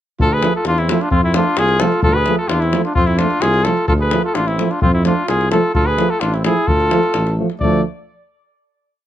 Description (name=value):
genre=balkan folk, Balkan brass band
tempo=129 BPM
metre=2/4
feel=straight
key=D dorian sharp4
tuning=A4 = 440 Hz
part: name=clear flugelhorn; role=melody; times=0.2-7.8 s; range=E4 to D5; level=-18 LUFS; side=left 2 dB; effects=none
part: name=mellow trumpet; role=second line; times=0.2-7.8 s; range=A3 to G#4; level=-22 LUFS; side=right 3 dB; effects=none
part: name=mellow tuba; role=bass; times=0.2-7.8 s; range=A1 to F2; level=-19 LUFS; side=equal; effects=none
part: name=davul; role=percussion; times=0.2-7.8 s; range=none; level=-21 LUFS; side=left 2 dB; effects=none
part: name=clear French horn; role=accompaniment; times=0.4-7.8 s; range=A3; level=-24 LUFS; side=left 7 dB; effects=none
part: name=warm trombone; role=accompaniment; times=0.4-7.8 s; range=F3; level=-21 LUFS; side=right 6 dB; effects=none
room=light reverb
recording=none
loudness=-14 LUFS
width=side -12 dB against mid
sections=0.2-7.6 A section; 7.6-8.5 final chord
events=none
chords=0.2 Dm; 1.1 F; 2.0 Dm; 3.0 F; 3.9 Dm; 4.8 F; 5.7 Dm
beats=| 0.20 0.65 | 1.11 1.57 | 2.03 2.49 | 2.95 3.42 | 3.88 4.34 | 4.81 5.27 | 5.74 6.21 | 6.67 7.14 | 7.60